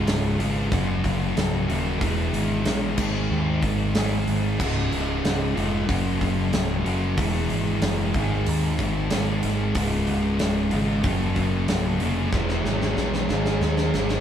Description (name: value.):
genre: quiet-loud alternative rock.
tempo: 93 BPM.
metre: 4/4.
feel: straight.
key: unclear.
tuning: A4 = 439 Hz.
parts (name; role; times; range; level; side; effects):
thick fuzz guitar; riff; 0.0-14.2 s; Db2 to Ab4; -24 LUFS; equal; distortion.
growling picked electric bass; bass; 0.0-14.2 s; Db1 to Eb2; -26 LUFS; equal; overdrive.
big rock drum kit; drums; 0.1-14.2 s; crash cymbal, hi-hat, kick drum, snare drum; -28 LUFS; equal; none.
room: moderate studio reverb, RT60 0.8 s.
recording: band playing live in one room.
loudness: -21 LUFS.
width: side -9 dB against mid.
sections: 0.0-14.2 A section.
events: drum fill 12.3-14.2.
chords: 0.0 Db; 0.7 Gb; 2.0 E; 3.0 Ab; 4.6 Db; 5.9 Gb; 7.2 E; 8.1 Ab; 9.8 Db; 11.0 Gb; 12.3 E; 13.3 Ab.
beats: 0.07 0.71 1.36 | 2.01 2.65 3.30 3.95 | 4.59 5.24 5.88 6.53 | 7.18 7.82 8.47 9.11 | 9.76 10.40 11.04 11.69 | 12.33 12.97 13.62.